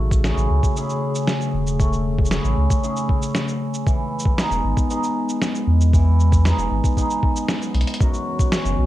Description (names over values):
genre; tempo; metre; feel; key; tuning
folktronica; 116 BPM; 4/4; straight; unclear; A4 = 440 Hz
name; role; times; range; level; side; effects
warbly tape-like pad; sustained chords; 0.0-8.9 s; C#3 to G#4; -26 LUFS; equal; chorus, built-in reverb
cimbalom; arpeggios; 0.0-8.9 s; F#2 to G#4; -25 LUFS; equal; vintage 12-bit sampler grit, tape echo
warm sub bass; bass; 0.0-8.9 s; E1 to E2; -18 LUFS; equal; none
electronic kick drum; drums; 0.1-8.5 s; none; -20 LUFS; equal; none
lo-fi sampler-style drum kit; drums; 0.1-8.8 s; hi-hat, shaker, snare drum; -26 LUFS; equal; none
room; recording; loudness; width
digital ambience; dark, warm production; -18 LUFS; side -14 dB against mid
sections
0.0-8.0 A section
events
band accent 7.5; drum fill 7.7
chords
0.0 Amaj7; 3.9 Emaj7; 8.0 F#7sus4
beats
0.24 0.76 1.28 | 1.80 2.31 2.83 3.35 | 3.87 4.38 4.90 5.42 | 5.93 6.45 6.97 7.49 | 8.00 8.52